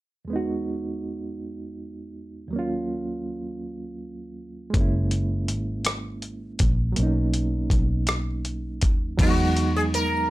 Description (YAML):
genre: slow six-eight R&B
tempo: 54 BPM (dotted quarters)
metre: 6/8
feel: straight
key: unclear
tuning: A4 = 441 Hz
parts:
  - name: barky reed electric piano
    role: accompaniment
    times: 0.2-10.3 s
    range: Eb2 to F#4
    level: -29 LUFS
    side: right 2 dB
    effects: overdrive, fast tremolo
  - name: dusty soul sampler-style drum kit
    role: drums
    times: 4.7-10.1 s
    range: crash cymbal, hi-hat, kick drum, rim click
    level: -24 LUFS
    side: equal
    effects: none
  - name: vintage muted fingered electric bass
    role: bass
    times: 4.8-10.3 s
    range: Gb1 to E2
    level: -26 LUFS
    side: equal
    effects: none
  - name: sitar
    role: melody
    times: 9.2-10.3 s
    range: F#4 to Bb4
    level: -24 LUFS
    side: left 1 dB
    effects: none
room: light reverb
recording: none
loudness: -23 LUFS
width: side -17 dB against mid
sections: 0.3-9.2 A section; 9.2-10.3 B section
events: none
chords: 0.3 Emaj9; 2.5 Ebm9; 4.7 Gb9; 7.0 Bmaj7; 9.2 Emaj9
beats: | 0.30 1.41 | 2.52 3.63 | 4.74 5.85 | 6.96 8.07 | 9.19 10.30